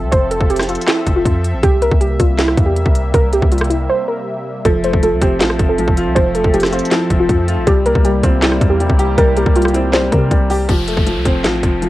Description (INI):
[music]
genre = hip hop, trap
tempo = 159 BPM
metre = 4/4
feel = half-time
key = F major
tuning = A4 = 440 Hz
[part]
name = warbly dusty pluck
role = melody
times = 0.0-10.7 s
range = E4 to C5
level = -18 LUFS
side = right 1 dB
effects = chorus, cassette tape
[part]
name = sweeping resonant pad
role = sustained chords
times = 0.0-10.7 s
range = C3 to E5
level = -25 LUFS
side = equal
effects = chorus, cassette tape
[part]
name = warm 808-style bass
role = bass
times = 0.0-11.9 s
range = F1 to C3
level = -18 LUFS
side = equal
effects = none
[part]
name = trap drum kit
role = drums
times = 0.1-11.9 s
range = handclaps, hi-hat, kick drum, rim click, snare drum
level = -16 LUFS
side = equal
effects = cassette tape
[part]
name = felt-muted upright piano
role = accompaniment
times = 4.7-11.9 s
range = F3 to G4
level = -18 LUFS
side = left 1 dB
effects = cassette tape
[part]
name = downlifter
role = sound effects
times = 10.7-11.9 s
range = none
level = -25 LUFS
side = left 1 dB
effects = none
[sound]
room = light reverb, digital ambience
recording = home recording on cassette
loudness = -12 LUFS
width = side -16 dB against mid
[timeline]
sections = 0.0-10.7 A section; 10.7-11.9 B section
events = break 3.9-4.7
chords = 0.0 Fmaj7; 1.6 C7; 4.7 Fmaj7; 7.7 C7; 10.7 F